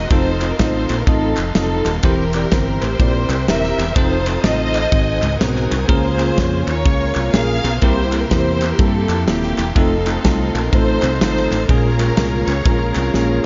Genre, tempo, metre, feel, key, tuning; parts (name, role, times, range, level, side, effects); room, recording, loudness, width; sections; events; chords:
uptempo gospel; 124 BPM; 4/4; swing 63% on 8ths; A4 = 440 Hz
warm studio string section; melody; 0.0-13.5 s; Bb3 to F5; -24 LUFS; equal
bright tonewheel organ; sustained chords; 0.0-13.5 s; Bb3 to Eb6; -31 LUFS; equal; fast rotary speaker
fingered electric bass; bass; 0.0-13.4 s; Eb1 to G2; -23 LUFS; equal
bell-like tine electric piano; accompaniment; 0.1-13.5 s; Ab2 to Eb5; -24 LUFS; equal
modern studio drum kit; drums; 0.1-13.3 s; kick drum, ride cymbal, snare drum; -21 LUFS; equal
group handclap; percussion; 0.4-13.0 s; -34 LUFS; equal
light reverb; nothing above 7.5 kHz; -17 LUFS; mono
0.0-13.5 A section
drum fill 13.1-13.5
0.1 F7; 2.0 C7/E; 4.0 F7; 4.9 Ab7; 5.9 Db6; 7.8 C7; 9.8 F7; 11.7 Bbm7